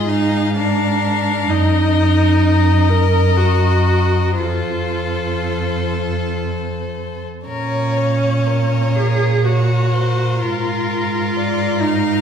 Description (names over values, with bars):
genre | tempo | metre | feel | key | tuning
classical, slow romantic movement for string quartet | 57-66 BPM | 3/4 | rubato | Bb minor | A4 = 438 Hz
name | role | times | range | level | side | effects
rich violin | melody | 0.0-12.2 s | Bb4 to F5 | -26 LUFS | left 6 dB | none
clear violin | second line | 0.0-12.2 s | Ab4 to Db5 | -25 LUFS | left 4 dB | none
rich viola | accompaniment | 0.0-12.2 s | Db4 to Bb4 | -20 LUFS | right 2 dB | none
rich cello | bass | 0.0-12.2 s | F2 to Bb2 | -18 LUFS | equal | none
room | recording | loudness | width
wet recital hall reverb, RT60 1.6 s | heard from further back in the room | -15 LUFS | side -8 dB against mid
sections
0.0-12.2 A section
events
none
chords
0.0 Bb7/Ab; 1.5 Ebm/Gb; 4.4 F; 7.5 Bbm; 10.4 Bb7/Ab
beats
0.56 | 1.50 2.42 3.37 | 4.38 5.41 6.44 | 7.47 8.47 9.45 | 10.41 11.35